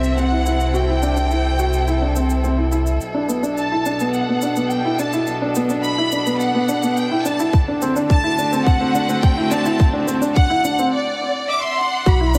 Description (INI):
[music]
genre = piano and strings electronica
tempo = 106 BPM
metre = 4/4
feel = straight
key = unclear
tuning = A4 = 440 Hz
[part]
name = rich studio violin section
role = melody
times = 0.0-12.4 s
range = D5 to D6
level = -25 LUFS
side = equal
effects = low-pass filter
[part]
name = rich string quartet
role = sustained chords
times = 0.0-12.4 s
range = B2 to A4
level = -28 LUFS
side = equal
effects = sidechain pumping
[part]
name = felt-muted upright piano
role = riff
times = 0.0-12.4 s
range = B3 to F#4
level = -23 LUFS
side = equal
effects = delay
[part]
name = warm sub bass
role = bass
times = 0.0-12.4 s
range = B1 to D2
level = -25 LUFS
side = equal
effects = sidechain pumping, high-pass filter
[part]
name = shaker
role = drums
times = 0.0-12.4 s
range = none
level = -35 LUFS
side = equal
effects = none
[part]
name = electronic kick drum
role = drums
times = 7.5-12.2 s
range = none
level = -18 LUFS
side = equal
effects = none
[sound]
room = moderate huge ambient reverb, RT60 4.4 s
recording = none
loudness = -19 LUFS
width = mono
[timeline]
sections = 0.0-3.0 A section; 3.0-12.1 B section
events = build-up 3.0-12.1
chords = 0.0 C6; 3.0 Bm7; 7.5 D7